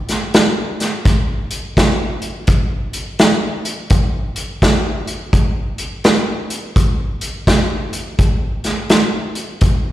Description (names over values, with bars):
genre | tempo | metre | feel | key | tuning
blues | 84 BPM | 4/4 | swing 64% on 8ths | none | none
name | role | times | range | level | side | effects
vintage drum kit | drums | 0.1-9.8 s | hi-hat, kick drum, snare drum | -15 LUFS | equal | slapback echo
room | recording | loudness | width
light reverb | live gig heard through the venue's PA, recital hall reverb | -15 LUFS | side -14 dB against mid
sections
0.0-9.9 A section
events
none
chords
none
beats
0.34 | 1.05 1.77 2.48 3.19 | 3.91 4.62 5.33 6.05 | 6.76 7.48 8.19 8.91 | 9.62